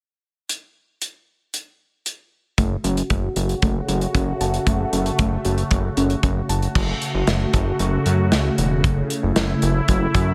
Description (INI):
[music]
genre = synth-pop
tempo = 115 BPM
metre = 4/4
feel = straight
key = unclear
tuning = A4 = 441 Hz
[part]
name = modern studio drum kit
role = drums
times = 0.5-10.3 s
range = crash cymbal, hi-hat, kick drum, snare drum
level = -25 LUFS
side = equal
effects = none
[part]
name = phased analog pad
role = sustained chords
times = 3.0-10.3 s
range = C#3 to F#4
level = -26 LUFS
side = equal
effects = phaser, chorus, low-pass filter
[part]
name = soft round pluck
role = arpeggios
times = 2.6-6.6 s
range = A3 to A5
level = -29 LUFS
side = equal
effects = chorus, low-pass filter, delay
[part]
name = fat analog bass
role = bass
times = 2.6-10.3 s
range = E1 to F#2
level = -24 LUFS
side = equal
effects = none
[sound]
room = light reverb, small room ambience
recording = none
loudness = -21 LUFS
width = mono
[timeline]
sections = 0.5-2.6 A section; 2.6-6.8 B section; 6.8-10.3 C section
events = filter sweep 2.6-6.8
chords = 0.5 N.C.; 2.6 F#m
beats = | 0.49 1.01 1.54 2.06 | 2.58 3.10 3.62 4.15 | 4.67 5.19 5.71 6.23 | 6.75 7.28 7.80 8.32 | 8.84 9.36 9.88